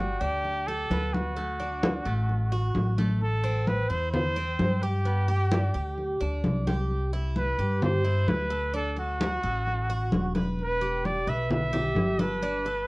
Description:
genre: latin, Cuban son and guajira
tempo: 130 BPM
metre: 4/4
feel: straight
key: G major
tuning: A4 = 435 Hz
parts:
  - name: breathy trumpet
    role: melody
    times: 0.0-12.9 s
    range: F#4 to E5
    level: -30 LUFS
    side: equal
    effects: none
  - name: Cuban tres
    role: arpeggios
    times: 0.0-12.9 s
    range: G3 to B4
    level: -34 LUFS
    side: right 1 dB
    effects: none
  - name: upright bass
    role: bass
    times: 0.0-12.9 s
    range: E1 to G2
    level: -28 LUFS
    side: equal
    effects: none
  - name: congas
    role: percussion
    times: 0.2-12.9 s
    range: none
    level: -29 LUFS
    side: left 1 dB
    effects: none
room: moderate studio ambience, RT60 0.5 s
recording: worn, warbling old tape, cassette tape, warbly pitch drift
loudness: -25 LUFS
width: side -24 dB against mid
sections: 0.0-3.2 A section; 3.2-12.9 B section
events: none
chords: 0.0 G; 1.4 D; 3.2 Am; 5.1 G; 6.9 C; 8.7 D; 10.6 Em

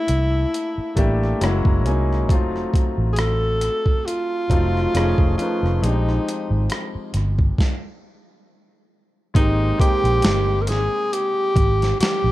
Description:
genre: R&B, neo-soul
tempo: 68 BPM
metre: 4/4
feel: swing 55% on 16ths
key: unclear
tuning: A4 = 440 Hz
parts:
  - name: warm tenor saxophone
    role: melody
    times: 0.0-12.3 s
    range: Eb4 to Bb4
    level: -22 LUFS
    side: equal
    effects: slapback echo
  - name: clear concert grand piano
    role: accompaniment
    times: 0.0-12.3 s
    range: F3 to A#5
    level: -26 LUFS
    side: left 2 dB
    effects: none
  - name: vintage muted fingered electric bass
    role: bass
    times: 0.1-12.3 s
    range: F1 to C2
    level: -21 LUFS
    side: equal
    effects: none
  - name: boom bap sampler-style drum kit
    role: drums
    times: 0.1-12.2 s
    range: hi-hat, kick drum, rim click, snare drum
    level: -20 LUFS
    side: equal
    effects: none
room: little or no reverb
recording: dark, warm production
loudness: -18 LUFS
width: side -16 dB against mid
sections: 0.0-9.4 A section; 9.4-12.3 B section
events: grand piano fill 0.5-2.3; stop 7.6-9.4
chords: 0.0 C13; 1.4 F#9; 2.3 F7b9; 4.9 F7alt; 5.8 Bb13sus4; 8.5 N.C.; 9.4 Abmaj7

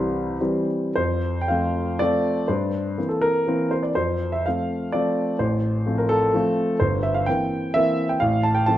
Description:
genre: classical, romantic triple-time dance for piano with dotted rhythms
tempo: 93-133 BPM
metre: 3/4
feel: rubato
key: F major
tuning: A4 = 440 Hz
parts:
  - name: warm grand piano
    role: solo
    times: 0.0-8.8 s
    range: G1 to C6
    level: -20 LUFS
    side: equal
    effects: none
room: moderate recital hall reverb, RT60 1.6 s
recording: dark, warm production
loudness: -20 LUFS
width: side -13 dB against mid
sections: 1.0-8.8 A section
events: none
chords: 0.0 C; 1.0 F; 2.5 C7/G; 4.0 F; 5.4 F/A; 6.8 C7/G; 8.2 F/A

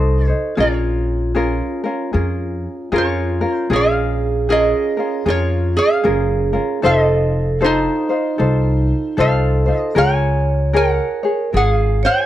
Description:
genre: Hawaiian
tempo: 77 BPM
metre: 4/4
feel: swing 62% on 8ths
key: Bb minor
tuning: A4 = 440 Hz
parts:
  - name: lap resonator guitar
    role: melody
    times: 0.0-12.3 s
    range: Eb4 to Ab5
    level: -20 LUFS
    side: equal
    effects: none
  - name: vibraphone with medium hard mallets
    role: second line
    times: 0.0-12.3 s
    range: Eb4 to Db5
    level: -22 LUFS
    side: right 5 dB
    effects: none
  - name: ukulele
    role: accompaniment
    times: 0.0-12.3 s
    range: Db4 to Db5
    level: -21 LUFS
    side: left 2 dB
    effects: none
  - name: upright bass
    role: bass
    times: 0.0-12.0 s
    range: F1 to F2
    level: -18 LUFS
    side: equal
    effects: none
room: studio reverb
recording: dry, close 1970s-style studio recording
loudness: -15 LUFS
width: side -13 dB against mid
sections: 0.0-3.7 A section; 3.7-12.3 A section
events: none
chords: 0.0 F7 (rootless); 0.6 Bbm7; 6.8 F7; 10.0 Db6

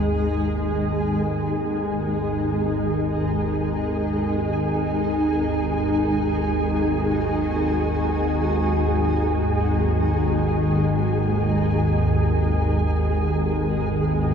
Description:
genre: dark ambient drone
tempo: free time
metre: none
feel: none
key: unclear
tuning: A4 = 435 Hz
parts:
  - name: granular cloud pad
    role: sustained chords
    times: 0.0-14.3 s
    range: G#3 to F#5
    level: -24 LUFS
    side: equal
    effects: built-in reverb, shimmer reverb
  - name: organ-like drone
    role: drone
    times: 0.0-14.3 s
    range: G#1 to D#2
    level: -23 LUFS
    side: equal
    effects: ensemble chorus, built-in reverb
  - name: flickering grainy texture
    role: texture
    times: 0.0-14.3 s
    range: G#4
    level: -28 LUFS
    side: right 2 dB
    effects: built-in reverb, shimmer reverb
room: wet cathedral reverb, RT60 7.4 s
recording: in a vast, echoing space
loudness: -20 LUFS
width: side -7 dB against mid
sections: 0.0-14.3 A section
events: none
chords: 0.0 G#5; 11.7 E/G#

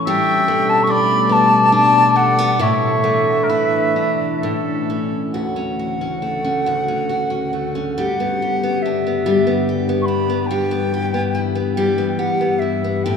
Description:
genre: celtic folk, Celtic slow air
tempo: 64-74 BPM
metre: 3/4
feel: rubato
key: D major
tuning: A4 = 440 Hz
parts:
  - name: picked steel-string acoustic guitar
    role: accompaniment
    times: 0.0-13.2 s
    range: D2 to G4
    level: -20 LUFS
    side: left 2 dB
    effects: none
  - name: soft additive organ-like pad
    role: sustained chords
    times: 0.0-13.2 s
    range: D2 to F#4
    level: -23 LUFS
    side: left 3 dB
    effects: ensemble chorus, built-in reverb
  - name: bright wooden flute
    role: melody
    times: 0.1-13.2 s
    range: E5 to C#6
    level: -20 LUFS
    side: equal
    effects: none
  - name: warm oboe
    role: second line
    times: 0.1-5.3 s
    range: A4 to E5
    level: -20 LUFS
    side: left 1 dB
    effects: none
room: wet cathedral reverb, RT60 4.5 s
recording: minimal, uncompressed stereo recording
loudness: -15 LUFS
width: side -6 dB against mid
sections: 0.0-5.3 A section; 5.3-13.2 B section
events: none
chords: 0.1 Gadd9; 2.6 Asus4; 4.4 A; 5.3 Dmaj7; 8.0 G; 10.5 Em/G

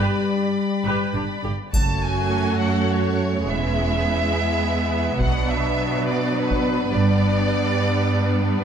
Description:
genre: cinematic, epic orchestral film score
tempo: 69 BPM (dotted quarters)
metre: 6/8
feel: straight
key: unclear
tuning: A4 = 444 Hz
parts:
  - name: rich symphonic violin section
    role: second line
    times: 0.0-8.6 s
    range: D4 to B5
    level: -30 LUFS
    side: left 3 dB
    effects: none
  - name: rich studio viola section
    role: accompaniment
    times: 0.0-8.6 s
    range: F#3 to B4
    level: -27 LUFS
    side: right 3 dB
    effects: none
  - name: warm French horn section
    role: sustained chords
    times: 0.0-8.6 s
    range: G3 to D4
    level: -26 LUFS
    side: left 2 dB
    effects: none
  - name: rich symphonic cello section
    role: bass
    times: 0.0-8.6 s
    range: E2 to B2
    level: -24 LUFS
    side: right 2 dB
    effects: none
  - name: rich symphonic double bass section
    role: bass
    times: 0.0-7.5 s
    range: E1 to B1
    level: -26 LUFS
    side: right 3 dB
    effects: none
  - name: warm symphonic violin section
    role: melody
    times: 1.7-8.6 s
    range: B4 to A5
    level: -26 LUFS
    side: equal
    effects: none
  - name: taiko ensemble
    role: drums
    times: 1.7-6.8 s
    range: none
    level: -25 LUFS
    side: equal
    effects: none
  - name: triangle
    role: percussion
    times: 1.7-2.9 s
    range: none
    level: -33 LUFS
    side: left 3 dB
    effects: none
room: moderate scoring stage reverb, RT60 1.6 s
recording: none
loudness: -19 LUFS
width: side -8 dB against mid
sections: 0.0-1.7 A section; 1.7-8.6 B section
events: none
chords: 0.0 G; 1.7 F#m; 3.5 E; 5.2 Bm; 6.9 G

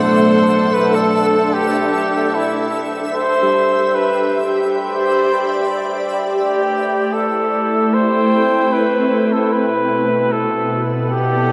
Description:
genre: ambient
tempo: 75 BPM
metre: 4/4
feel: straight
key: unclear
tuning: A4 = 440 Hz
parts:
  - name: warm flugelhorn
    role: melody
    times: 0.0-11.5 s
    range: E4 to C5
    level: -20 LUFS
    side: equal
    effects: delay
  - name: soft additive organ-like pad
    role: sustained chords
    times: 0.0-11.5 s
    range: B2 to G5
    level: -20 LUFS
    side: equal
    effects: ensemble chorus, built-in reverb
  - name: muted felt-like synth keys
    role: arpeggios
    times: 0.0-7.7 s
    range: F#3 to B5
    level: -26 LUFS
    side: equal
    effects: chorus, delay
  - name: twinkling granular texture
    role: texture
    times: 0.0-6.4 s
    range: E5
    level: -32 LUFS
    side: equal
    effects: built-in reverb, ensemble chorus
room: wet huge ambient reverb, RT60 7.8 s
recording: dreamy mix soaked in reverb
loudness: -16 LUFS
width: mono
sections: 0.0-6.3 A section; 6.3-11.5 B section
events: none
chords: 0.0 Gsus2; 3.1 Cmaj7; 6.3 Am9; 9.5 Bm7

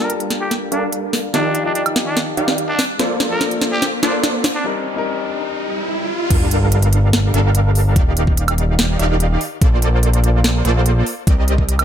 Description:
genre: future bass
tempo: 145 BPM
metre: 4/4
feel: half-time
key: unclear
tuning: A4 = 443 Hz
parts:
  - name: trumpet with straight mute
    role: melody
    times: 0.0-4.6 s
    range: D4 to Bb4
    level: -24 LUFS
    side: equal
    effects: sidechain pumping, low-pass filter, dub echo
  - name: warm grand piano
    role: accompaniment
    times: 0.0-6.3 s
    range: F3 to A5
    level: -25 LUFS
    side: left 6 dB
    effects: sidechain pumping, ping-pong delay
  - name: supersaw stab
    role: riff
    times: 0.0-11.8 s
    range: Eb3 to F5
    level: -21 LUFS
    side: right 1 dB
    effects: sidechain pumping, low-pass filter, ping-pong delay
  - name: trap drum kit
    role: drums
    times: 0.0-11.8 s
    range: crash cymbal, hi-hat, snare drum, woodblock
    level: -20 LUFS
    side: right 1 dB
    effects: overdrive
  - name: riser, swell and sub drop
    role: sound effects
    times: 2.3-8.0 s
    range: none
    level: -26 LUFS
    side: equal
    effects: none
  - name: fat analog bass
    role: bass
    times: 6.3-11.8 s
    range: Eb1 to C2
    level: -15 LUFS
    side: equal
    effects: sidechain pumping
  - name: electronic kick drum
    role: drums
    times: 6.3-11.7 s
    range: none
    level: -15 LUFS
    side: equal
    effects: overdrive
room: light reverb, digital ambience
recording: none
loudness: -15 LUFS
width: side -9 dB against mid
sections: 0.0-6.3 A section; 6.3-11.8 B section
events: build-up 0.0-6.3; drum fill 0.0-4.7; filter sweep on supersaw synth 0.0-6.3; riser 2.3-6.3; break 4.7-6.3; swell 5.5-6.3; drop 6.3-11.8; impact 6.3-8.0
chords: 0.0 Gm9; 1.3 Ebmaj9; 2.8 Bbmaj7; 4.4 Cm7; 6.3 Gm9; 8.0 Ebmaj9; 9.4 Bbmaj7; 11.1 Cm7

